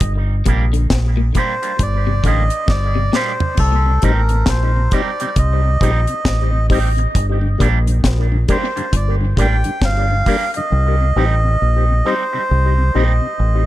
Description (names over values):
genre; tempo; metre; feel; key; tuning
dub reggae; 67 BPM; 4/4; swing 61% on 16ths; C dorian; A4 = 438 Hz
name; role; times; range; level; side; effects
deep dub fingered electric bass; bass; 0.0-13.7 s; G1 to C2; -15 LUFS; equal; none
deep reggae drum kit; drums; 0.0-10.7 s; hi-hat, kick drum, snare drum, splash cymbal, toms; -18 LUFS; equal; none
electric guitar with an envelope filter; accompaniment; 0.5-13.1 s; G3 to G4; -26 LUFS; right 7 dB; warbly pitch drift, tape echo
clean electric guitar; arpeggios; 0.5-3.4 s; Bb2 to D3; -27 LUFS; left 7 dB; tape echo
melodica; melody; 1.4-13.7 s; A4 to G5; -21 LUFS; right 1 dB; tape echo
tonewheel organ; accompaniment; 3.9-13.3 s; G2 to Eb4; -25 LUFS; left 4 dB; slow rotary speaker, tape echo
room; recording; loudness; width
studio reverb; echo-heavy mix; -14 LUFS; side -15 dB against mid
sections
0.0-13.7 A section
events
break 0.0-3.6; drum fill 2.7-3.6; part muted 10.7-13.7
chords
0.0 Gm; 3.6 Cm; 7.1 Gm; 10.7 Cm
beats
| 0.01 0.90 1.79 2.69 | 3.58 4.47 5.36 6.25 | 7.14 8.03 8.92 9.82 | 10.71 11.60 12.49 13.38